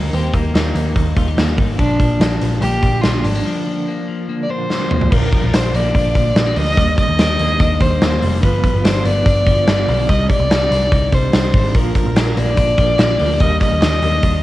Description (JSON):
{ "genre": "jangly indie pop", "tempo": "145 BPM", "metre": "4/4", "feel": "straight", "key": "unclear", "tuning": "A4 = 440 Hz", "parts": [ { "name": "warm violin", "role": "melody", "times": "0.0-14.4 s", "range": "Bb3 to Eb5", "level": "-20 LUFS", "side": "equal", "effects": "cassette tape" }, { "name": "mellow electric guitar", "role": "accompaniment", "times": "0.0-14.4 s", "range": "G2 to D5", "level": "-26 LUFS", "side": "right 7 dB", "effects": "tremolo, cassette tape" }, { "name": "electric guitar at the edge of break-up", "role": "arpeggios", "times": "0.0-14.4 s", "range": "F3 to G4", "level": "-24 LUFS", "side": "left 7 dB", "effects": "cassette tape, analog delay" }, { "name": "vintage muted picked electric bass", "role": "bass", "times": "0.0-14.4 s", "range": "F1 to Eb2", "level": "-18 LUFS", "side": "equal", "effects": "none" }, { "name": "big rock drum kit", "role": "drums", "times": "0.1-14.3 s", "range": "crash cymbal, hi-hat, kick drum, snare drum, toms", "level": "-17 LUFS", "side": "equal", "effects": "none" }, { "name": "group handclap", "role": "percussion", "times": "12.0-13.9 s", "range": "none", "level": "-37 LUFS", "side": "right 8 dB", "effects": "none" } ], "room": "light reverb, studio ambience", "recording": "home recording on cassette", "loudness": "-13 LUFS", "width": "side -16 dB against mid", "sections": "0.0-5.1 A section; 5.1-14.4 B section", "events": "break 3.5-5.1; drum fill 4.7-5.1", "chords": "0.0 Eb; 1.8 Bb; 6.8 Ebmaj7; 8.4 G7; 10.1 Cmadd9; 11.7 Bb; 13.4 Ebmaj7" }